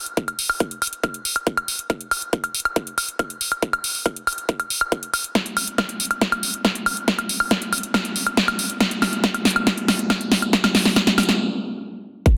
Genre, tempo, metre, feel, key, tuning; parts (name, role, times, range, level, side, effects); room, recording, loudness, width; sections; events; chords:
psychedelic trance; 139 BPM; 4/4; straight
big-room dance drum kit; drums; 0.1-12.3 s; hi-hat, snare drum, woodblock; -22 LUFS; equal
electronic kick drum; drums; 0.2-12.3 s; -23 LUFS; equal; high-pass filter on kick
wet plate reverb, RT60 1.5 s, digital ambience; dense, heavily limited modern master; -22 LUFS; mono
0.0-12.3 A section
build-up 0.0-12.3; drum fill 5.4-11.4; stop 11.4-12.3